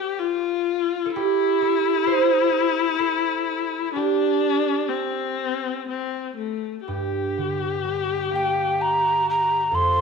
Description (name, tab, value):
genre	celtic folk, Celtic slow air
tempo	64 BPM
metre	3/4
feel	rubato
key	G dorian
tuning	A4 = 440 Hz
part	dark viola	second line	0.0-10.0 s	A3 to A4	-24 LUFS	left 10 dB	none
part	concert harp	accompaniment	0.0-10.0 s	F2 to C5	-24 LUFS	right 9 dB	none
part	mellow hollow mid whistle	melody	8.4-10.0 s	G5 to C6	-19 LUFS	right 1 dB	none
room	moderate echo chamber reverb, RT60 1.6 s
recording	1960s-style stereo with parts hard left and right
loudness	-20 LUFS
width	side -5 dB against mid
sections	0.0-6.9 A section; 6.9-10.0 B section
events	harp solo 0.0-6.9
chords	0.0 N.C.; 6.9 Gm